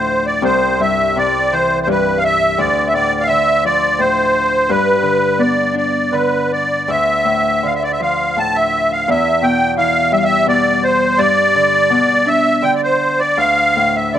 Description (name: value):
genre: celtic folk, Celtic slow air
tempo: 83 BPM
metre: 3/4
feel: uneven beats, rubato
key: D dorian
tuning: A4 = 438 Hz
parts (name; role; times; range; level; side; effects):
- musette accordion; melody; 0.0-14.2 s; B4 to A5; -14 LUFS; equal; none
- Celtic harp; accompaniment; 0.0-14.2 s; C2 to D4; -18 LUFS; left 1 dB; none
room: light reverb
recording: close, detailed microphones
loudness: -12 LUFS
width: side -10 dB against mid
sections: 0.0-14.2 A section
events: none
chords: 0.4 C; 2.6 Dm; 4.7 G; 6.9 Dm; 9.1 Em; 11.2 G; 13.4 Dm